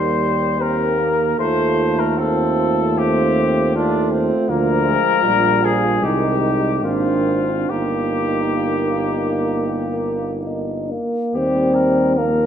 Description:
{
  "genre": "classical, hymn-like piece for brass band",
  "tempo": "64-83 BPM",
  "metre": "4/4",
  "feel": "rubato",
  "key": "Eb major",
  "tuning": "A4 = 440 Hz",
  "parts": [
    { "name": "mellow cornet", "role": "melody", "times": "0.0-12.5 s", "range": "F4 to C5", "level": "-21 LUFS", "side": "left 6 dB", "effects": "none" },
    { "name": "warm French horn section", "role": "second line", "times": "0.0-11.0 s", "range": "D4 to G4", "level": "-24 LUFS", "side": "right 7 dB", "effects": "none" },
    { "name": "brilliant trombone", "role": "accompaniment", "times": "0.0-12.5 s", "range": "Eb3 to D4", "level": "-24 LUFS", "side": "right 3 dB", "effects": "none" },
    { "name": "clear euphonium", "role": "accompaniment", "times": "0.0-12.5 s", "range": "F3 to Eb4", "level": "-22 LUFS", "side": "left 1 dB", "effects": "none" },
    { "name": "clear tuba", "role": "bass", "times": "0.0-12.5 s", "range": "G1 to Eb2", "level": "-23 LUFS", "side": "equal", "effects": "none" }
  ],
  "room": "wet recital hall reverb, RT60 1.5 s",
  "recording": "none",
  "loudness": "-16 LUFS",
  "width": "side -8 dB against mid",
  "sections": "0.0-11.3 A section; 11.3-12.5 A section",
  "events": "none",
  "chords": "0.0 Eb; 1.4 F7/Eb; 4.5 Bb/D; 6.0 Ab/C; 6.8 Bb7/Ab; 7.7 Eb/G; 11.3 Eb",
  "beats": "0.61 | 1.39 2.18 2.97 3.75 | 4.49 5.24 6.02 6.83 | 7.70 8.63 9.54 10.44 | 11.34 12.17"
}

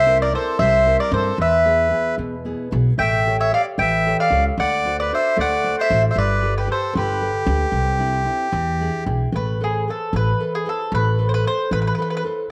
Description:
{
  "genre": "italian folk, Italian serenade",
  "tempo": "76 BPM (dotted quarters)",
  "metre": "6/8",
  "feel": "rubato",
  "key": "C major, A harmonic minor from 9.3 s",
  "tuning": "A4 = 440 Hz",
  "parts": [
    { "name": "mandolin", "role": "melody", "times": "0.0-12.2 s", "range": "G#4 to G5", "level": "-22 LUFS", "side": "equal", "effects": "slapback echo" },
    { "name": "accordion", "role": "second line", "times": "0.0-9.0 s", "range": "G4 to E5", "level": "-26 LUFS", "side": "equal", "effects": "none" },
    { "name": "nylon-string guitar", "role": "accompaniment", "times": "0.0-12.5 s", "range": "B2 to C#5", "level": "-29 LUFS", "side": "equal", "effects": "none" },
    { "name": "upright bass", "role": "bass", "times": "0.0-11.9 s", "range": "G1 to G2", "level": "-24 LUFS", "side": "equal", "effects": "none" }
  ],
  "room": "moderate spring reverb, RT60 1.5 s, small room reverb",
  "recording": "none",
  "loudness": "-20 LUFS",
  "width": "mono",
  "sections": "0.0-9.3 A section; 9.3-12.5 B section",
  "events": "none",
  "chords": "0.0 C7; 1.4 E; 3.0 A7; 4.6 D7; 6.2 Gadd9; 7.7 Cadd9; 8.5 E7; 9.3 Amadd9",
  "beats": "0.59 | 1.39 2.18 | 2.99 3.79 | 4.59 5.38 | 6.17 6.95 | 7.73 8.53 | 9.34 10.13 | 10.92 11.71"
}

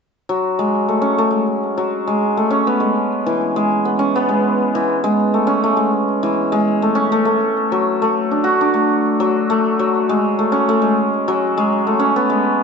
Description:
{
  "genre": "folktronica",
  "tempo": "101 BPM",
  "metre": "4/4",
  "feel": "swing 56% on 16ths",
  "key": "F# minor",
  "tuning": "A4 = 440 Hz",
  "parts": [
    { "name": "hammered dulcimer", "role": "solo", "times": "0.3-12.6 s", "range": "E3 to F#4", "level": "-15 LUFS", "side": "equal", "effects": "none" }
  ],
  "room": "moderate small room ambience, RT60 0.5 s",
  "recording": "dark, warm production, nothing above 7.9 kHz",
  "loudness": "-15 LUFS",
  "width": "side -5 dB against mid",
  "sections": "0.1-9.6 A section; 9.6-12.6 B section",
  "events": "none",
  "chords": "0.1 F#madd9; 2.5 C#m7; 7.3 D; 9.6 F#madd9; 12.0 C#7(no3)",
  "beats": "| 0.13 0.72 1.32 1.91 | 2.50 3.10 3.69 4.29 | 4.88 5.47 6.07 6.66 | 7.26 7.85 8.45 9.04 | 9.63 10.23 10.82 11.42 | 12.01 12.60"
}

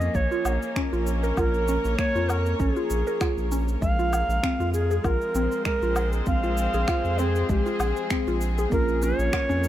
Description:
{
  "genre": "organic downtempo",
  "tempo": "98 BPM",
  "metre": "4/4",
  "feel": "swing 55% on 16ths",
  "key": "Bb minor",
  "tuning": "A4 = 437 Hz",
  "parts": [
    { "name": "bright Native American-style cedar flute", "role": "melody", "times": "0.0-9.7 s", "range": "Ab4 to F5", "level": "-28 LUFS", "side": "equal", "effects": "tape echo" },
    { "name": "rich chamber string section", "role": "sustained chords", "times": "0.0-9.7 s", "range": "F3 to Db5", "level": "-32 LUFS", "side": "left 2 dB", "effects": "sidechain pumping" },
    { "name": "round analog bass", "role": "bass", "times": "0.0-9.7 s", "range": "Bb1 to F2", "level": "-26 LUFS", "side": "equal", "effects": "none" },
    { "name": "electronic shaker, woodblock and finger snaps", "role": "drums", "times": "0.0-9.7 s", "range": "none", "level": "-34 LUFS", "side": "equal", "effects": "none" },
    { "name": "mallet-like synth pluck", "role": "arpeggios", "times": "0.1-9.7 s", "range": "Ab3 to Bb4", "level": "-30 LUFS", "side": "equal", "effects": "lush chorus, cassette tape, tape echo" },
    { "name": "electronic kick drum", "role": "drums", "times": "0.1-9.5 s", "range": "none", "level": "-27 LUFS", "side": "equal", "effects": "none" },
    { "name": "mellow tine electric piano", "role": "accompaniment", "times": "8.7-9.7 s", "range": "Bb3 to F4", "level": "-29 LUFS", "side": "right 3 dB", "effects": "medium stereo tremolo, sidechain pumping" }
  ],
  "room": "light reverb",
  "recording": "none",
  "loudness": "-22 LUFS",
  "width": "side -12 dB against mid",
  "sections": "0.0-8.7 A section",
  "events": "none",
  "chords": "0.0 Bbm; 3.8 Fm/Bb; 8.7 Bbm",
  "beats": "0.15 0.76 | 1.37 1.99 2.60 3.21 | 3.82 4.43 5.05 5.66 | 6.27 6.88 7.50 8.11 | 8.72 9.33"
}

